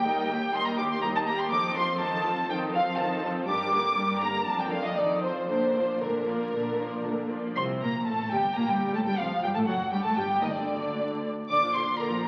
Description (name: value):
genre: quick classical-period movement for string orchestra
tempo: 122 BPM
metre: 4/4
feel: rubato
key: Bb major, G minor from 7.6 s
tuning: A4 = 442 Hz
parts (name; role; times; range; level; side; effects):
- clear symphonic violin section; melody; 0.0-12.3 s; Bb4 to D6; -30 LUFS; equal; none
- warm symphonic violin section; second line; 0.0-12.3 s; D4 to G5; -37 LUFS; equal; none
- rich studio viola section; accompaniment; 0.0-12.3 s; D3 to G4; -35 LUFS; equal; none
- rich symphonic cello section; bass; 0.1-12.3 s; D2 to C3; -36 LUFS; equal; none
- dark chamber double bass section; bass; 7.6-12.3 s; F1 to D2; -44 LUFS; equal; none
room: wet scoring stage reverb, RT60 1.9 s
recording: very old 78 rpm record, vinyl crackle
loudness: -28 LUFS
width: mono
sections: 0.0-7.6 A section; 7.6-12.3 B section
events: none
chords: 0.0 Eb; 1.5 F7; 3.5 Gm; 4.5 Bb/F; 5.0 F7; 5.5 Bb; 7.6 Gm; 9.6 F#m6; 10.5 N.C.; 11.5 Bb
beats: 0.06 0.55 1.03 | 1.52 2.01 2.50 2.98 | 3.47 3.97 4.46 4.97 | 5.49 6.01 6.53 7.05 | 7.57 8.07 8.56 9.06 | 9.55 10.05 10.54 11.02 | 11.51 11.99